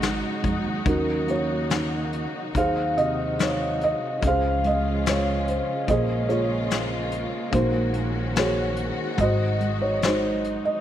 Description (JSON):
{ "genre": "acoustic folk-pop ballad", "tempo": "72 BPM", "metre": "4/4", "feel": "straight", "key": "unclear", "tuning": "A4 = 440 Hz", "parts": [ { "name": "felt-muted upright piano", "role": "melody", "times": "0.0-10.8 s", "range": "C3 to F5", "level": "-24 LUFS", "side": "right 1 dB", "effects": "none" }, { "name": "warm symphonic string section", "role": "sustained chords", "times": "0.0-10.8 s", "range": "C3 to Gb4", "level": "-31 LUFS", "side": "left 2 dB", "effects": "none" }, { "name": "upright bass", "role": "bass", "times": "0.0-10.5 s", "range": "Ab1 to F2", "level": "-29 LUFS", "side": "equal", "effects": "none" }, { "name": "soft brush drum kit", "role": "drums", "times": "0.0-10.6 s", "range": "hi-hat, kick drum, snare drum", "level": "-28 LUFS", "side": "left 3 dB", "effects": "none" } ], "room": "moderate echo chamber reverb, RT60 1.9 s, small room ambience", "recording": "1960s-style stereo", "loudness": "-22 LUFS", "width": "side -11 dB against mid", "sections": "0.0-10.8 A section", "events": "none", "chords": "0.0 Ab7sus4; 0.9 Ebm7; 2.5 Ab7/Eb; 4.2 Dbmaj7; 5.9 Bbm9; 7.5 Gb69/Bb; 9.2 Ab7", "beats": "0.01 | 0.85 1.70 2.54 3.38 | 4.21 5.04 5.87 6.70 | 7.52 8.35 9.18 10.02" }